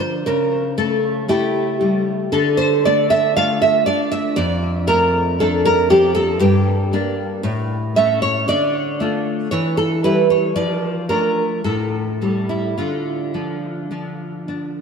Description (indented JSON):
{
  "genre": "romantic piece for solo classical guitar",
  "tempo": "58 BPM",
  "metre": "2/4",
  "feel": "rubato",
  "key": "D minor",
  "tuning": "A4 = 439 Hz",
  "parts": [
    { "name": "nylon-string guitar", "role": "solo", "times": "0.0-14.8 s", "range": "F2 to F5", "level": "-16 LUFS", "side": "equal", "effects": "lush chorus, analog delay" }
  ],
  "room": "wet plate reverb, RT60 2.7 s",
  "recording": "dreamy mix soaked in reverb",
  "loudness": "-16 LUFS",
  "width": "side -6 dB against mid",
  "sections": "0.0-14.8 A section",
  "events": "none",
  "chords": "0.3 A7/C#; 2.3 Dm; 4.4 Dm/F; 6.4 Gm; 7.5 A; 8.5 Dm; 9.5 Em6; 10.5 Dm/F; 11.6 A7; 12.8 Dm",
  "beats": "| 0.28 1.32 | 2.35 3.38 | 4.38 5.40 | 6.42 7.45 | 8.48 9.51 | 10.55 11.62 | 12.76 13.91"
}